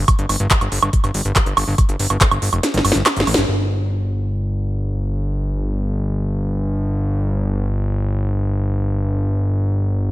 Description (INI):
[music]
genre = psychedelic trance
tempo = 141 BPM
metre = 4/4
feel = straight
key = unclear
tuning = A4 = 440 Hz
[part]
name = fat analog bass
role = bass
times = 0.0-10.1 s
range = F1 to A1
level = -19 LUFS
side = equal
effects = tube saturation
[part]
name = electronic kick drum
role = drums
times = 0.1-2.3 s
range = none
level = -16 LUFS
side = equal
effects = none
[part]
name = techno drum kit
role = drums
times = 0.1-3.5 s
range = handclaps, hi-hat, snare drum, woodblock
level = -18 LUFS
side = right 2 dB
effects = none
[sound]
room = little or no reverb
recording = none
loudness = -17 LUFS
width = side -16 dB against mid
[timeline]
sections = 0.0-3.5 A section; 3.5-10.1 B section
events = kick drops out 2.6-3.5; drum fill 2.6-3.5; band accent 3.3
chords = none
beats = | 0.08 0.51 0.93 1.36 | 1.78 2.21 2.63 3.06 | 3.48 3.91 4.33 4.76 | 5.19 5.61 6.04 6.46 | 6.89 7.31 7.74 8.16 | 8.59 9.02 9.44 9.87